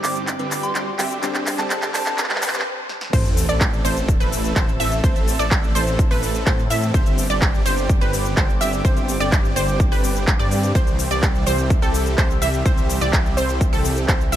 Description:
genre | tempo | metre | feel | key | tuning
EDM, festival progressive house | 126 BPM | 4/4 | straight | unclear | A4 = 441 Hz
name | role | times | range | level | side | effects
soft synth bell | melody | 0.0-2.1 s | G5 to D6 | -28 LUFS | right 1 dB | chorus, digital delay
warm baby grand piano | accompaniment | 0.0-3.2 s | D3 to D4 | -33 LUFS | left 4 dB | sidechain pumping
lush unison pad | sustained chords | 0.0-14.4 s | C4 to E6 | -31 LUFS | equal | chorus, sidechain pumping
supersaw chords | riff | 0.0-14.4 s | D3 to E5 | -27 LUFS | right 1 dB | sidechain pumping, low-pass filter, digital delay
detuned saw bass | bass | 0.0-14.4 s | G1 to A2 | -24 LUFS | equal | sidechain pumping
big-room dance drum kit | drums | 0.0-14.4 s | crash cymbal, handclaps, hi-hat, shaker, snare drum | -26 LUFS | equal | overdrive, small room reverb
riser and sub drop | sound effects | 0.0-5.0 s | none | -30 LUFS | equal | none
wide unison pluck | arpeggios | 3.1-14.4 s | A4 to E5 | -25 LUFS | right 1 dB | sidechain pumping, digital delay
electronic kick drum | drums | 3.1-14.2 s | none | -18 LUFS | equal | overdrive, small room reverb
room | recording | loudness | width
light reverb | high-pass filter | -17 LUFS | side -12 dB against mid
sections
0.0-3.1 A section; 3.1-14.4 B section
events
build-up 0.0-3.1; drum fill 0.0-2.7, 2.9; riser 0.0-2.7; filter sweep on supersaw synth 0.0-3.1; stop 2.7-3.1; drop 3.1-14.4; impact 3.1-5.0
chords
0.0 Gsus4; 3.1 Am; 6.9 Gsus4; 10.8 C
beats
0.28 0.75 | 1.23 1.70 2.18 2.66 | 3.13 3.61 4.08 4.56 | 5.04 5.51 5.99 6.46 | 6.94 7.42 7.89 8.37 | 8.85 9.32 9.80 10.28 | 10.75 11.23 11.70 12.18 | 12.66 13.13 13.61 14.09

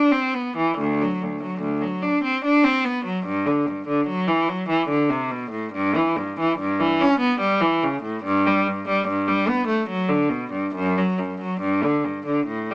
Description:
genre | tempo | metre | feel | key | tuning
classical, baroque-style suite movement for unaccompanied cello | 72 BPM | 3/4 | uneven beats, rubato | G major | A4 = 442 Hz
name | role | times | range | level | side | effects
clear cello | solo | 0.0-12.7 s | D2 to D4 | -19 LUFS | equal | none
room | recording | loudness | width
light reverb | small speaker sound | -19 LUFS | side -24 dB against mid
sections
0.0-12.7 A section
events
none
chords
none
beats
| 0.79 1.63 2.44 | 3.26 4.08 4.91 | 5.75 6.59 7.41 | 8.23 9.05 9.88 | 10.73 11.60 12.46

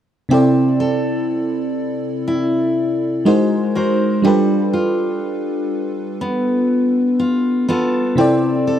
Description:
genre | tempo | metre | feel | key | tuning
R&B | 61 BPM | 4/4 | straight | C major | A4 = 442 Hz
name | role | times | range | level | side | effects
FM electric piano with soft pad layer | accompaniment | 0.3-8.8 s | C3 to D5 | -18 LUFS | right 1 dB | chorus
picked steel-string acoustic guitar | arpeggios | 0.3-8.8 s | G3 to C5 | -18 LUFS | left 1 dB | analog delay
room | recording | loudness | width
light reverb, small room ambience | dry, gritty hardware recording | -15 LUFS | side -10 dB against mid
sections
0.3-8.8 A section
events
none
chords
0.3 C69; 3.3 Ab9; 4.2 G9; 8.2 C69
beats
| 0.31 1.29 2.28 3.26 | 4.24 5.23 6.21 7.20 | 8.18

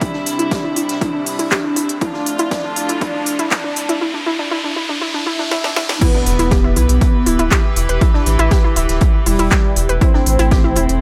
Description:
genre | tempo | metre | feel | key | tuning
melodic techno | 120 BPM | 4/4 | straight | E phrygian | A4 = 440 Hz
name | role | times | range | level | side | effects
mellow synth brass | melody | 0.0-11.0 s | G3 to D4 | -24 LUFS | equal | chorus, phaser, digital delay
warm studio string section | sustained chords | 0.0-11.0 s | C2 to B4 | -28 LUFS | equal | sidechain pumping
warbly dusty pluck | arpeggios | 0.0-10.8 s | D4 to B4 | -24 LUFS | equal | chorus, sidechain pumping, digital delay
electronic kick drum | drums | 0.0-10.6 s | none | -18 LUFS | equal | none
techno drum kit | drums | 0.0-11.0 s | crash cymbal, handclaps, hi-hat, snare drum | -24 LUFS | equal | sidechain pumping on hats, high-pass filter on hats, high-pass filter on snare, sidechain pumping on cymbals, high-pass filter on cymbals, high-pass filter on room
vintage drum kit | drums | 0.0-11.0 s | hi-hat, snare drum | -36 LUFS | equal | sidechain pumping on hats, high-pass filter on hats, high-pass filter on snare, high-pass filter on room
riser, swell and impact | sound effects | 0.1-8.0 s | none | -28 LUFS | equal | none
round analog bass | bass | 6.3-11.0 s | D1 to B1 | -19 LUFS | equal | sidechain pumping
room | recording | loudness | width
light reverb, digital ambience | high-pass filter | -16 LUFS | mono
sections
0.0-6.0 A section; 6.0-11.0 B section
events
build-up 0.0-6.0; filter sweep on synth arpeggio sound 0.0-6.0; filter sweep on analog polysynth 0.0-6.0; filter sweep 0.0-6.0; riser 0.1-6.0; swell 5.0-6.0; drum fill 5.5-6.0; drop 6.0-11.0; impact 6.0-8.0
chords
0.0 C; 2.0 F; 6.0 Em; 10.0 Am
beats
| 0.01 0.51 1.01 1.51 | 2.01 2.51 3.01 3.51 | 4.01 4.51 5.01 5.51 | 6.01 6.51 7.01 7.51 | 8.01 8.51 9.01 9.51 | 10.01 10.51

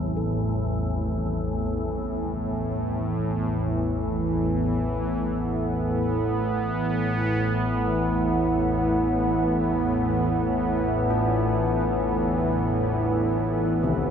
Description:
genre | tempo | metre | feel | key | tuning
dark ambient drone | free time | none | none | A minor | A4 = 439 Hz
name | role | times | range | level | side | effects
old church bells | arpeggios | 0.0-14.1 s | C3 to D4 | -36 LUFS | left 4 dB | none
organ-like drone | drone | 0.0-14.1 s | A1 to E2 | -27 LUFS | equal | ensemble chorus, built-in reverb
bronze singing bowl | texture | 0.0-14.1 s | A4 to E5 | -42 LUFS | left 1 dB | none
sweeping resonant pad | sustained chords | 0.2-14.1 s | A2 to B3 | -24 LUFS | equal | chorus
room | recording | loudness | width
wet lush hall reverb, RT60 2.8 s | dreamy mix soaked in reverb | -22 LUFS | side -8 dB against mid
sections
0.0-14.1 A section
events
none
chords
0.0 Amadd9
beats
free time

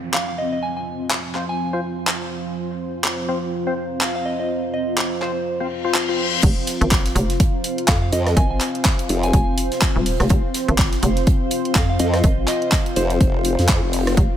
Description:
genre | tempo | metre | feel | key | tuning
bass house | 124 BPM | 4/4 | swing 58% on 16ths | unclear | A4 = 440 Hz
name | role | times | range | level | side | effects
dark analog pad | sustained chords | 0.0-14.4 s | F3 to Eb5 | -28 LUFS | equal | chorus, sidechain pumping
downlifter and reverse cymbal | sound effects | 0.0-6.4 s | none | -27 LUFS | left 6 dB | none
granular cloud pad | texture | 0.0-14.4 s | C4 to C6 | -28 LUFS | left 1 dB | built-in reverb, sidechain pumping
soft synth bell | melody | 0.1-13.6 s | C5 to Ab5 | -28 LUFS | right 1 dB | chorus, dub echo
garage drum kit | drums | 0.1-14.3 s | crash cymbal, handclaps, hi-hat, rim click | -24 LUFS | equal | overdrive
percussive organ stab | stabs | 1.4-6.4 s | C4 to C5 | -28 LUFS | left 4 dB | analog chorus, sidechain pumping, dub echo
hollow knocking FM bass | bass | 6.4-14.3 s | Eb1 to F2 | -21 LUFS | equal | sidechain pumping
electronic kick drum | drums | 6.4-14.3 s | none | -18 LUFS | equal | overdrive
modern studio drum kit | drums | 6.4-14.3 s | hi-hat, snare drum | -35 LUFS | right 4 dB | none
formant-sweep wobble bass | bass | 8.1-14.2 s | F1 to F2 | -20 LUFS | equal | chorus, tube saturation, sidechain pumping
room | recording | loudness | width
light reverb | none | -18 LUFS | side -10 dB against mid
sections
0.0-6.4 A section; 6.4-14.4 B section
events
filter sweep on analog synth pad 0.0-6.4; reverse cymbal 5.7-6.4; drop 6.4-14.4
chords
0.0 F5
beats
0.14 | 0.62 1.11 1.59 2.08 | 2.56 3.04 3.53 4.01 | 4.50 4.98 5.46 5.95 | 6.43 6.92 7.40 7.88 | 8.37 8.85 9.34 9.82 | 10.30 10.79 11.27 11.75 | 12.24 12.72 13.21 13.69 | 14.17

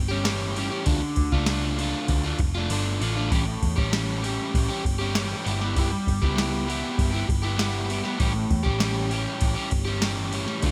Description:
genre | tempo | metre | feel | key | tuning
indie rock | 98 BPM | 4/4 | straight | A mixolydian | A4 = 440 Hz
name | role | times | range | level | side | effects
hollow-body short-scale picked electric bass | bass | 0.0-10.7 s | F1 to E2 | -30 LUFS | equal | none
overdriven electric guitar | riff | 0.1-10.7 s | A2 to G4 | -29 LUFS | equal | slapback echo
soft vintage rhythm box | drums | 0.2-10.7 s | crash cymbal, kick drum, snare drum | -29 LUFS | equal | none
room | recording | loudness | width
light reverb, digital ambience | none | -25 LUFS | mono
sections
0.0-10.7 A section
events
kick and snare drop out 2.7-3.3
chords
0.0 A7; 0.9 Dm; 3.3 A7; 5.5 Em/G; 8.2 A7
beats
0.27 | 0.88 1.49 2.10 2.71 | 3.32 3.93 4.54 5.15 | 5.76 6.37 6.98 7.59 | 8.20 8.81 9.42 10.03 | 10.64

